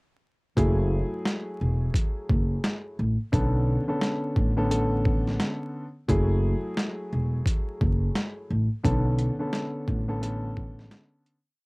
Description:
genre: hip hop, boom-bap hip-hop.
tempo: 87 BPM.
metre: 4/4.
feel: swing 61% on 16ths.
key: F# minor.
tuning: A4 = 440 Hz.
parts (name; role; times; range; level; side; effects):
dark baby grand piano; accompaniment; 0.6-11.4 s; D3 to A4; -30 LUFS; equal; cassette tape, high-pass filter, low-pass filter.
upright bass; bass; 0.6-10.9 s; E1 to B1; -25 LUFS; equal; none.
boom bap sampler-style drum kit; drums; 0.6-11.5 s; hi-hat, kick drum, snare drum; -26 LUFS; equal; overdrive, cassette tape.
room: little or no reverb.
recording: home recording on cassette, vinyl crackle.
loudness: -24 LUFS.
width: side -30 dB against mid.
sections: 0.6-11.6 verse.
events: fade-out 8.8-11.6.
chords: 0.6 F#m9; 3.3 Bm9; 6.1 F#m9; 8.8 Bm9.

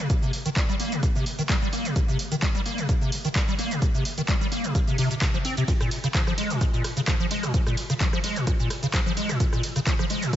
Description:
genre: acid house.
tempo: 129 BPM.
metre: 4/4.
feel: swing 54% on 16ths.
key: C phrygian.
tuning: A4 = 440 Hz.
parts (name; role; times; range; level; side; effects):
acid bass, square; riff; 0.0-10.4 s; Bb2 to C4; -26 LUFS; equal; ensemble chorus, sidechain pumping, analog delay.
electronic kick drum; drums; 0.1-10.4 s; none; -25 LUFS; equal; none.
punchy analog drum machine; drums; 0.1-10.4 s; handclaps, hi-hat, ride cymbal, rim click, shaker; -31 LUFS; right 1 dB; none.
room: moderate lush hall reverb, RT60 1.9 s, digital ambience.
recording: dreamy mix soaked in reverb, nothing above 7.8 kHz.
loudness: -22 LUFS.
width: side -11 dB against mid.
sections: 0.0-10.4 A section.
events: none.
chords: none.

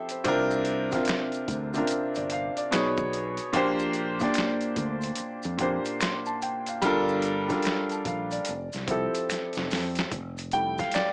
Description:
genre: R&B, neo-soul.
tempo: 73 BPM.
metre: 4/4.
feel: swing 63% on 16ths.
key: F major.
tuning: A4 = 440 Hz.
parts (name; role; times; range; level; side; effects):
warm grand piano; accompaniment; 0.0-11.1 s; Bb2 to C6; -29 LUFS; equal; none.
boom bap sampler-style drum kit; drums; 0.1-11.1 s; hi-hat, kick drum, snare drum; -34 LUFS; equal; overdrive.
maracas and finger snaps; percussion; 0.1-11.1 s; none; -40 LUFS; equal; none.
fingered electric bass; bass; 0.3-10.8 s; F1 to F2; -37 LUFS; equal; none.
room: light reverb.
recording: small speaker sound.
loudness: -28 LUFS.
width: mono.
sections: 0.0-10.1 A section; 10.1-11.1 B section.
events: drum fill 9.3-10.1; grand piano solo 10.1-11.1.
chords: 0.3 C9sus4; 2.7 B69; 3.5 Bb69; 6.8 Gm9; 8.5 Fmaj9.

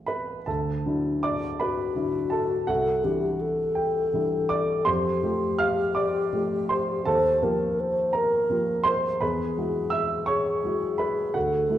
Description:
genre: classical, impressionist duo for alto flute and grand piano.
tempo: 55 BPM (dotted quarters).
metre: 6/8.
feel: rubato.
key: unclear.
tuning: A4 = 441 Hz.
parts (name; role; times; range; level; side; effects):
dark grand piano; accompaniment; 0.0-11.8 s; A1 to F6; -26 LUFS; right 2 dB; none.
mellow hollow alto flute; melody; 1.6-11.8 s; F#4 to C5; -25 LUFS; left 2 dB; none.
room: wet recital hall reverb, RT60 1.8 s.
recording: dark, warm production.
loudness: -23 LUFS.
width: side -12 dB against mid.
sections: 0.5-11.8 A section.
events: none.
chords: 0.5 Dadd9; 2.7 Cadd9; 4.9 Fadd9; 7.1 Ebadd9; 9.2 Eadd9.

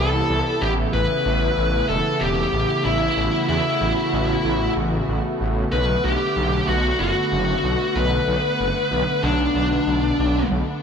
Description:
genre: synthwave.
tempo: 94 BPM.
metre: 4/4.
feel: straight.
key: unclear.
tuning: A4 = 439 Hz.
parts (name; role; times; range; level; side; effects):
high-gain lead guitar; melody; 0.0-10.5 s; D4 to B4; -21 LUFS; left 1 dB; distortion.
warm analog pad; sustained chords; 0.0-10.8 s; C3 to F#5; -25 LUFS; right 1 dB; wide subtle chorus.
wide detuned saw bass; bass; 0.0-10.6 s; E1 to E2; -24 LUFS; equal; chorus.
room: moderate plate reverb, RT60 2.4 s.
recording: bright 1980s-style digital production.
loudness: -18 LUFS.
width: side -6 dB against mid.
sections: 0.0-10.8 A section.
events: none.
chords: 0.0 Cmaj7; 0.6 Aadd9; 5.7 Bm7.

